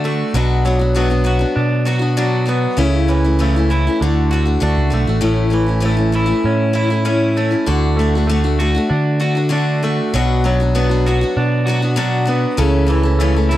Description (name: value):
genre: rock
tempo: 98 BPM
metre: 4/4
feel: straight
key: D major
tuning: A4 = 440 Hz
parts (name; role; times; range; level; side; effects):
- picked steel-string acoustic guitar; accompaniment; 0.0-13.6 s; A2 to A4; -20 LUFS; left 4 dB; none
- electric guitar through a small old amp; riff; 0.0-13.6 s; A2 to F#4; -19 LUFS; right 2 dB; none
- picked electric bass; bass; 0.0-13.6 s; A1 to D3; -16 LUFS; equal; none
room: little or no reverb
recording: dry, close 1970s-style studio recording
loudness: -14 LUFS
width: side -14 dB against mid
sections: 0.0-13.6 A section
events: none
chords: 0.4 Bm; 2.8 A/C#; 4.0 D; 5.2 A; 7.7 D; 10.1 Bm; 12.6 A/C#